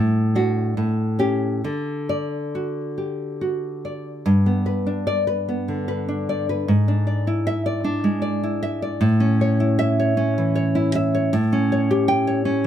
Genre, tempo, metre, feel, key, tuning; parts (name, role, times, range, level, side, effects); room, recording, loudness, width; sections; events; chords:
romantic piece for solo classical guitar; 66-81 BPM; 3/4; rubato; D major; A4 = 440 Hz
nylon-string guitar; solo; 0.0-12.7 s; G2 to G5; -19 LUFS; equal
little or no reverb; close, detailed microphones; -19 LUFS; side -10 dB against mid
0.0-4.3 A section; 4.3-12.7 B section
0.0 D/A; 0.8 A7; 1.6 D; 4.3 G; 6.7 E7/G#; 9.0 A; 11.3 A7